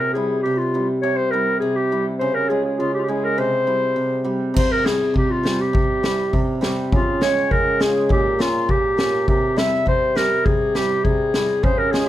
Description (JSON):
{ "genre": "klezmer", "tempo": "102 BPM", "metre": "2/4", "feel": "straight", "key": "C phrygian dominant", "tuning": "A4 = 439 Hz", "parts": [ { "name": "warm clarinet", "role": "melody", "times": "0.0-12.1 s", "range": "F4 to E5", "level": "-20 LUFS", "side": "left 1 dB", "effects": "none" }, { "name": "hammered dulcimer", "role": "accompaniment", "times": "0.0-12.1 s", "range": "Bb2 to G4", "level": "-23 LUFS", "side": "right 1 dB", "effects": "none" }, { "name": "street-band drum kit", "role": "drums", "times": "4.6-12.1 s", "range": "crash cymbal, kick drum, snare drum", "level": "-22 LUFS", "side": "equal", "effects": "none" } ], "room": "moderate studio reverb, RT60 0.5 s", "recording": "none", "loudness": "-17 LUFS", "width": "side -13 dB against mid", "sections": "0.0-4.6 A section; 4.6-12.1 A section", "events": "none", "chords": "0.0 C; 2.2 Db; 3.4 C; 6.9 Db; 8.1 Bbm; 9.3 C" }